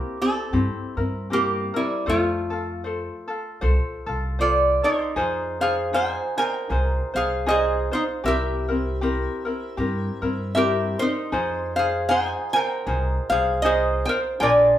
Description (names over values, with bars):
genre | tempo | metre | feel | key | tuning
Hawaiian | 78 BPM | 4/4 | swing 57% on 8ths | F major, F minor from 5.2 s | A4 = 439 Hz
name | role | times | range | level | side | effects
lap resonator guitar | melody | 0.0-14.8 s | G3 to Ab5 | -22 LUFS | right 1 dB | none
ukulele | accompaniment | 0.0-14.8 s | C4 to C5 | -26 LUFS | left 1 dB | none
upright bass | bass | 0.5-14.8 s | Bb1 to G2 | -27 LUFS | equal | none
room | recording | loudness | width
wet large studio reverb, RT60 0.9 s | band playing live in one room | -21 LUFS | side -12 dB against mid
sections
0.0-5.2 A section; 5.2-14.8 B section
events
none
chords
0.0 C7; 2.1 F; 5.2 Fm7; 8.2 C7; 11.3 Fm7